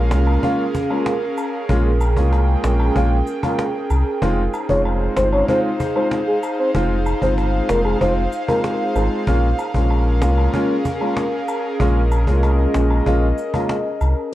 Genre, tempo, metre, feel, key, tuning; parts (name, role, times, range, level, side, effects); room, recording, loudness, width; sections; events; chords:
dancehall; 95 BPM; 4/4; straight; A4 = 443 Hz
dark concert grand piano; accompaniment; 0.0-13.7 s; Ab3 to F4; -22 LUFS; equal; low-pass filter
airy breathy pad; sustained chords; 0.0-14.3 s; Db4 to G5; -23 LUFS; right 1 dB; chorus, low-pass filter
sub bass with octave; bass; 0.0-14.1 s; F1 to C2; -18 LUFS; equal
cajon; drums; 0.1-13.8 s; -27 LUFS; equal
cabasa and woodblock; percussion; 0.1-14.2 s; -32 LUFS; equal
soft octave-layered synth lead; melody; 4.7-8.6 s; Ab4 to Db5; -20 LUFS; left 1 dB; chorus, tremolo, tape echo
small room ambience; dry, gritty hardware recording, cassette tape; -16 LUFS; side -14 dB against mid
0.0-14.3 A section
0.0 Bbm7; 4.2 Fm7; 9.3 Bbm7